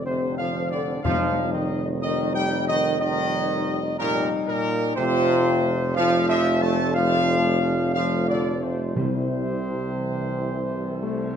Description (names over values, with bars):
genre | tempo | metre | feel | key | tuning
classical | 61 BPM | 4/4 | straight | F major | A4 = 435 Hz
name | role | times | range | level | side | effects
dark trumpet section | melody | 0.0-11.4 s | Bb4 to A5 | -26 LUFS | left 1 dB | none
warm tuba | bass | 0.0-11.4 s | F1 to C2 | -27 LUFS | right 3 dB | none
mellow French horn section | sustained chords | 0.1-11.3 s | D3 to F4 | -27 LUFS | left 4 dB | none
warm trombone section | sustained chords | 0.1-11.4 s | Bb2 to A3 | -28 LUFS | right 4 dB | none
timpani | percussion | 1.0-2.5, 9.0-10.5 s | F2 to C3 | -30 LUFS | left 1 dB | none
room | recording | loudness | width
moderate scoring stage reverb, RT60 1.6 s | none | -21 LUFS | side -8 dB against mid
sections
0.0-11.4 A section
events
none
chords
0.0 Bbadd9/F (rootless); 1.0 Eb/F; 5.0 F; 9.0 C